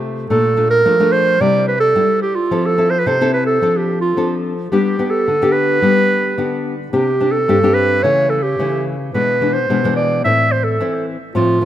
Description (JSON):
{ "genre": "samba", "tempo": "109 BPM", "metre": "4/4", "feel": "straight", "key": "C major", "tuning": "A4 = 440 Hz", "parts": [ { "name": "nylon-string guitar", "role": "accompaniment", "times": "0.0-11.7 s", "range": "G2 to A4", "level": "-17 LUFS", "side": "left 3 dB", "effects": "none" }, { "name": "clear clarinet", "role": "melody", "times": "0.3-11.7 s", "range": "F4 to E5", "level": "-16 LUFS", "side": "right 2 dB", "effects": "tape echo" } ], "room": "light reverb", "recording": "rough home demo mix, faint mains hum", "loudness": "-13 LUFS", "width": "side -11 dB against mid", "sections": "0.0-11.7 A section", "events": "none", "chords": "0.3 Bbmaj7; 1.4 Cadd9; 2.5 Fmaj7; 3.6 Dm7/F; 4.7 G; 6.9 Csus2; 8.0 A/C#; 9.1 E7/B; 10.2 Am" }